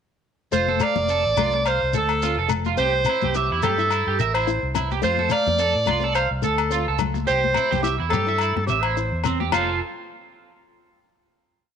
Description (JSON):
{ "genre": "highlife guitar band", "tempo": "107 BPM", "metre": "4/4", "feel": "swing 55% on 16ths", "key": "F major", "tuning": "A4 = 439 Hz", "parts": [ { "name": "bright clarinet", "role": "melody", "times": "0.5-9.8 s", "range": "G4 to F5", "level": "-23 LUFS", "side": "right 1 dB", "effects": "none" }, { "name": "fingerpicked old ladder-braced acoustic guitar", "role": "accompaniment", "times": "0.5-9.7 s", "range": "F3 to E4", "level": "-31 LUFS", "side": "left 11 dB", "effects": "none" }, { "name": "electric guitar at the edge of break-up", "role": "arpeggios", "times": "0.5-9.8 s", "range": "C4 to F5", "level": "-26 LUFS", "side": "right 11 dB", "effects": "lush chorus, slapback echo" }, { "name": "fingered electric bass", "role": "bass", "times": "0.5-9.8 s", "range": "F1 to A2", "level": "-27 LUFS", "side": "equal", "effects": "none" }, { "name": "shekere", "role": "percussion", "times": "0.5-9.8 s", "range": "none", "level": "-31 LUFS", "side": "left 5 dB", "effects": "none" }, { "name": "congas", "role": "percussion", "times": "0.7-9.8 s", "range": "none", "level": "-32 LUFS", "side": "left 10 dB", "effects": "none" }, { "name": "agogo bells", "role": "percussion", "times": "0.8-9.7 s", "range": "none", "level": "-29 LUFS", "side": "left 13 dB", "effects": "none" } ], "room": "light reverb, small room ambience", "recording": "1960s-style stereo with parts hard left and right", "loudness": "-19 LUFS", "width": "side -7 dB against mid", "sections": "0.5-9.5 groove; 9.5-11.8 final chord", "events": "none", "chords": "0.5 F; 2.8 C; 5.0 F; 7.3 C; 9.5 F" }